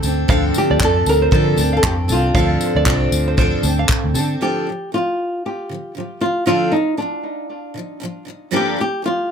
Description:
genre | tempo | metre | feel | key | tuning
acoustic pop | 116 BPM | 4/4 | swing 60% on 16ths | unclear | A4 = 440 Hz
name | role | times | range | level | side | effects
picked steel-string acoustic guitar | accompaniment | 0.0-9.3 s | G2 to A4 | -21 LUFS | equal | double-tracked left and right
vintage muted fingered electric bass | bass | 0.0-4.4 s | C2 to D3 | -19 LUFS | equal | none
modern studio drum kit | drums | 0.0-4.3 s | handclaps, kick drum, tambourine | -20 LUFS | equal | none
open-back banjo | arpeggios | 0.3-4.0 s | C5 to F5 | -25 LUFS | right 6 dB | none
flamenco guitar | melody | 0.6-9.3 s | D4 to Bb4 | -20 LUFS | equal | tape echo
room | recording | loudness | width
light reverb | none | -15 LUFS | side -7 dB against mid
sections
0.0-4.4 A section; 4.4-9.3 B section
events
none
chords
0.0 Dm7; 8.5 Gm7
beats
| 0.29 0.80 1.32 1.83 | 2.35 2.86 3.38 3.89 | 4.41 4.92 5.44 5.95 | 6.47 6.98 7.50 8.01 | 8.53 9.04

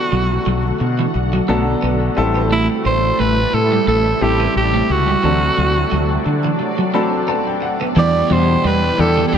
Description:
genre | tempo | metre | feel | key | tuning
pop | 88 BPM | 4/4 | swing 55% on 16ths | E minor | A4 = 440 Hz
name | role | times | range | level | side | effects
raspy alto saxophone | melody | 0.0-9.4 s | E4 to D5 | -19 LUFS | right 3 dB | none
clear grand piano | accompaniment | 0.0-9.4 s | B2 to B5 | -21 LUFS | left 2 dB | none
shimmering ambient pad | sustained chords | 0.0-9.4 s | C3 to B5 | -22 LUFS | left 1 dB | chorus, built-in reverb
twelve-string electric guitar | riff | 0.1-9.4 s | E3 to B3 | -23 LUFS | right 4 dB | lush chorus, tape echo
fretless electric bass | bass | 0.1-9.4 s | A1 to D3 | -19 LUFS | left 1 dB | none
overdriven electric guitar | accompaniment | 8.0-9.4 s | E3 to E4 | -27 LUFS | left 3 dB | ensemble chorus
room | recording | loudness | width
moderate plate reverb, RT60 3.5 s | none | -14 LUFS | side -8 dB against mid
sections
0.0-8.0 A section; 8.0-9.4 B section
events
break 6.6-8.0; grand piano fill 6.6-8.0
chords
0.0 Bm7; 2.2 Am7; 5.2 D7; 8.0 Em7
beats
0.47 1.15 1.83 | 2.51 3.19 3.88 4.56 | 5.24 5.92 6.60 7.29 | 7.97 8.65 9.33

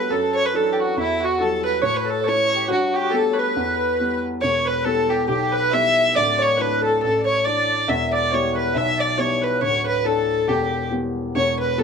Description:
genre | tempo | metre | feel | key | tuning
celtic folk, Celtic polka | 139 BPM | 2/4 | swing 55% on 8ths | E dorian | A4 = 440 Hz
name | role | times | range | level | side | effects
dark fiddle | melody | 0.0-11.8 s | E4 to E5 | -21 LUFS | equal | none
Celtic harp | second line | 0.0-11.8 s | E4 to E5 | -26 LUFS | right 4 dB | none
accordion | second line | 0.0-11.8 s | E4 to E5 | -25 LUFS | left 2 dB | light tremolo tuning
dark upright piano | accompaniment | 0.0-11.8 s | D1 to E4 | -26 LUFS | left 2 dB | none
room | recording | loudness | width
moderate small room ambience, RT60 0.5 s | band playing live in one room | -18 LUFS | side -6 dB against mid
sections
0.0-4.4 A section; 4.4-11.3 B section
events
none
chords
0.1 Dadd9/F#; 1.0 Emadd9; 1.8 A; 2.7 Gadd9; 3.6 Em; 6.2 Dsus2; 7.9 Em; 9.6 Dsus2; 10.5 Em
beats
| 0.10 0.54 | 0.97 1.40 | 1.83 2.26 | 2.69 3.13 | 3.56 3.99 | 4.42 4.86 | 5.29 5.72 | 6.15 6.58 | 7.02 7.45 | 7.88 8.32 | 8.75 9.18 | 9.62 10.05 | 10.48 10.91 | 11.34 11.78

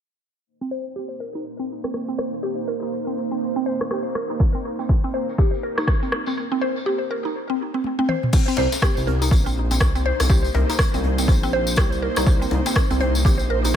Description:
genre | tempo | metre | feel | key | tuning
afro house | 122 BPM | 4/4 | swing 60% on 16ths | C minor | A4 = 439 Hz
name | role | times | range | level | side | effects
ethereal airy pad | sustained chords | 1.1-13.8 s | Bb3 to C5 | -29 LUFS | right 2 dB | ensemble chorus, built-in reverb, tremolo, sidechain pumping
mallet-like synth pluck | arpeggios | 0.6-13.7 s | C4 to C5 | -25 LUFS | equal | chorus, phaser, sidechain pumping, tape echo
afro-pop drum kit | drums | 1.8-12.9 s | crash cymbal, rim click, toms | -28 LUFS | equal | dub echo
electronic kick drum | drums | 4.4-13.4 s | none | -18 LUFS | equal | none
tambourine | percussion | 4.4-13.7 s | none | -31 LUFS | left 3 dB | dub echo
smooth synth bass | bass | 8.6-13.8 s | Bb1 to C2 | -23 LUFS | equal | sidechain pumping
djembe | percussion | 8.6-13.7 s | none | -29 LUFS | left 2 dB | dub echo
room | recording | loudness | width
light reverb | echo-heavy mix, low-pass filter | -19 LUFS | side -9 dB against mid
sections
0.5-8.3 A section; 8.3-13.8 B section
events
filter sweep on synth pluck 0.5-8.3; filter sweep 0.5-8.3; break 6.4-8.3; drum fill 7.8-8.3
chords
0.5 Cm7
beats
| 0.46 0.96 1.45 1.94 | 2.43 2.92 3.42 3.91 | 4.40 4.89 5.38 5.87 | 6.37 6.86 7.35 7.84 | 8.33 8.82 9.32 9.81 | 10.30 10.79 11.28 11.78 | 12.27 12.76 13.25 13.74

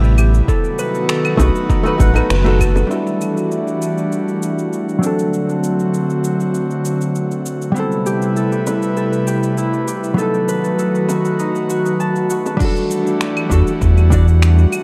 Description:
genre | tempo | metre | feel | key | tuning
sunset chillout | 99 BPM | 4/4 | straight | E minor | A4 = 439 Hz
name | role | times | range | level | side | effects
airy breathy pad | sustained chords | 0.0-14.8 s | C3 to B4 | -22 LUFS | equal | chorus
Celtic harp | arpeggios | 0.0-14.7 s | D#4 to A5 | -26 LUFS | equal | tape echo
round analog bass | bass | 0.0-2.8, 13.5-14.7 s | F#1 to E2 | -14 LUFS | equal | none
smooth R&B drum kit | drums | 0.0-14.8 s | claves, crash cymbal, finger snaps, shaker | -29 LUFS | equal | small room ambience, analog delay
electronic kick drum | drums | 0.5-2.7, 12.6-14.2 s | none | -20 LUFS | equal | overdrive, small room ambience
hollow-body jazz guitar | accompaniment | 1.4-14.3 s | F#3 to D5 | -23 LUFS | equal | low-pass filter, tape echo
bongos | percussion | 1.4-2.9, 8.7-12.6 s | none | -29 LUFS | equal | none
room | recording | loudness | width
light reverb, digital ambience | echo-heavy mix | -17 LUFS | mono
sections
0.0-2.9 A section; 2.9-12.6 B section; 12.6-14.8 A section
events
band accent 2.3-2.6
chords
0.5 B7; 2.9 Em11; 5.0 D7; 7.8 Am9; 10.2 B7; 12.6 Em11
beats
| 0.48 1.09 1.70 2.30 | 2.91 3.52 4.12 4.73 | 5.33 5.94 6.54 7.15 | 7.76 8.36 8.97 9.57 | 10.18 10.79 11.39 12.00 | 12.61 13.21 13.82 14.42

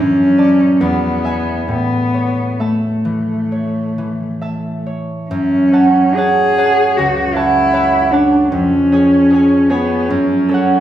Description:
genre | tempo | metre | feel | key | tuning
classical, romantic duo for cello and harp | 65-78 BPM | 4/4 | rubato | A major, F# minor from 5.3 s | A4 = 442 Hz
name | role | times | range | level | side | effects
dark cello | melody | 0.0-10.8 s | A3 to G#4 | -14 LUFS | left 1 dB | none
concert harp | accompaniment | 0.0-10.8 s | C#2 to A5 | -16 LUFS | right 2 dB | none
room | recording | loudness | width
wet recital hall reverb, RT60 1.4 s | recorded in a church or concert hall | -12 LUFS | side -11 dB against mid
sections
0.0-5.3 A section; 5.3-10.8 B section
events
none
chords
0.0 D/F#; 0.8 E; 1.7 A; 5.3 F#m; 8.5 C#/E#; 10.1 F#m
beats
0.80 | 1.68 2.59 3.51 4.41 | 5.29 6.15 6.96 7.73 | 8.52 9.30 10.09

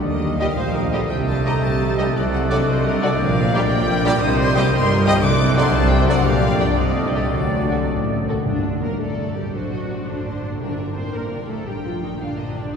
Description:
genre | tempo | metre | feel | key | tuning
classical, dramatic, fast romantic movement for symphony orchestra | 106-119 BPM (dotted quarters) | 6/8 | rubato | G minor | A4 = 440 Hz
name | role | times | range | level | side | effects
clear symphonic violin section | melody | 0.0-12.8 s | Bb4 to Eb6 | -28 LUFS | left 2 dB | none
bright concert flute | second line | 0.0-8.2 s | Eb6 to A6 | -31 LUFS | left 1 dB | none
bright oboe | second line | 0.0-8.3 s | D5 to Eb5 | -33 LUFS | right 1 dB | none
clear clarinet | second line | 0.0-8.5 s | A4 to D5 | -31 LUFS | left 1 dB | none
rich symphonic viola section | accompaniment | 0.0-12.8 s | D4 to D5 | -30 LUFS | right 1 dB | none
warm bassoon | accompaniment | 0.0-8.2 s | F#3 to A3 | -30 LUFS | right 2 dB | none
concert harp | arpeggios | 0.0-12.8 s | G2 to A5 | -27 LUFS | left 4 dB | none
rich studio cello section | bass | 0.0-12.8 s | G2 to C4 | -25 LUFS | right 1 dB | none
rich symphonic double bass section | bass | 0.0-12.8 s | G1 to Eb2 | -25 LUFS | right 1 dB | none
warm tuba | bass | 0.0-8.4 s | G1 to Eb2 | -26 LUFS | right 1 dB | none
rich symphonic violin section | second line | 0.4-12.8 s | F#4 to G5 | -31 LUFS | left 1 dB | none
clear trombone section | sustained chords | 0.4-8.3 s | Bb2 to G3 | -30 LUFS | right 2 dB | none
warm French horn section | sustained chords | 0.4-8.3 s | A3 to A4 | -32 LUFS | left 3 dB | none
bright trumpet section | stabs | 0.4-8.3 s | D5 to Eb5 | -30 LUFS | equal | none
timpani | percussion | 8.5-11.1 s | G2 | -31 LUFS | equal | none
room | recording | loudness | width
wet cathedral reverb, RT60 6.4 s | heard from further back in the room | -17 LUFS | side -6 dB against mid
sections
0.0-8.5 A section; 8.5-12.8 B section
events
none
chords
0.0 Eb; 1.1 Am7b5/C; 2.2 D7/C; 3.2 Gm/Bb; 4.2 Cm7; 5.2 D7/C; 6.2 Gm/Bb; 6.8 Am7b5/C; 7.3 D; 8.5 Gm; 9.5 D7/A; 10.6 Gm; 11.7 Gm/Bb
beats
| 0.04 0.57 | 1.10 1.63 | 2.16 2.68 | 3.20 3.71 | 4.22 4.73 | 5.23 5.74 | 6.25 6.78 | 7.33 7.90 | 8.45 9.01 | 9.55 10.07 | 10.61 11.14 | 11.67 12.20 | 12.73

